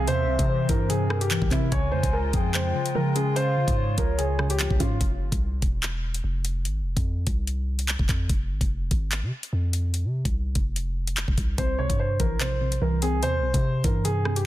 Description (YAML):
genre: hip hop, drill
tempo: 146 BPM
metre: 4/4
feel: half-time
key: F harmonic minor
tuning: A4 = 440 Hz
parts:
  - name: dark concert grand piano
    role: melody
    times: 0.0-5.0, 11.6-14.5 s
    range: E4 to Db5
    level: -28 LUFS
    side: right 1 dB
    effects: none
  - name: hollow clarinet-like synth lead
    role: second line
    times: 0.0-5.0 s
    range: Bb4 to Ab5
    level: -34 LUFS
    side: left 3 dB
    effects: chorus, tape echo
  - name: warbly dusty pluck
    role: accompaniment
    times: 0.0-5.0, 11.6-14.5 s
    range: C3 to Db4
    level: -30 LUFS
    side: right 1 dB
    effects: chorus
  - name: hollow soft pad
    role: sustained chords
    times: 0.0-5.0 s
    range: C3 to F4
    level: -34 LUFS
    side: left 1 dB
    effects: chorus, phaser
  - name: long sustained 808-style bass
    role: bass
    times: 0.0-14.5 s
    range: E1 to Db3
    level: -26 LUFS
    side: equal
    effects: none
  - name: drill drum kit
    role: drums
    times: 0.1-14.5 s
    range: handclaps, hi-hat, kick drum, rim click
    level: -26 LUFS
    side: equal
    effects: none
room: little or no reverb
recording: dense, heavily limited modern master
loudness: -22 LUFS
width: side -14 dB against mid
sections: 0.0-5.0 A section; 5.0-14.5 B section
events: break 5.0-11.6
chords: 0.0 C; 1.7 Db; 5.0 F5; 11.6 C